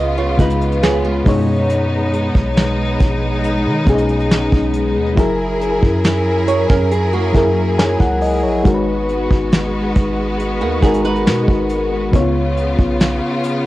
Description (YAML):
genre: contemporary R&B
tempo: 69 BPM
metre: 4/4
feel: straight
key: G# minor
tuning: A4 = 439 Hz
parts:
  - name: mellow FM electric piano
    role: accompaniment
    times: 0.0-13.7 s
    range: B2 to G#5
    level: -18 LUFS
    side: left 2 dB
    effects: chorus, cassette tape
  - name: rich symphonic string section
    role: sustained chords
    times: 0.0-13.7 s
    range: C#3 to A#4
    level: -22 LUFS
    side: equal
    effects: sidechain pumping, cassette tape
  - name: flamenco guitar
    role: arpeggios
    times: 0.0-12.1 s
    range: G#3 to D#5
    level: -21 LUFS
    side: right 6 dB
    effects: cassette tape, tape echo
  - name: long sustained 808-style bass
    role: bass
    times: 0.0-13.2 s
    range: F#1 to D#3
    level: -21 LUFS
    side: equal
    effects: none
  - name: large celesta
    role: texture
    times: 0.0-9.5 s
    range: C#5 to G#5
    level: -30 LUFS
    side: left 2 dB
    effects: none
  - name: soft brush drum kit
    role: drums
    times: 0.4-13.6 s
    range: hi-hat, kick drum, snare drum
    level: -15 LUFS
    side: equal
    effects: cassette tape
room: little or no reverb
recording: home recording on cassette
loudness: -13 LUFS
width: side -16 dB against mid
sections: 0.0-13.7 A section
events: none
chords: 0.0 C#7; 1.3 B69; 5.2 F#9; 8.7 G#m7; 12.1 C#7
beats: 0.83 | 1.70 2.57 3.44 4.31 | 5.17 6.04 6.92 7.78 | 8.65 9.52 10.39 11.26 | 12.13 13.00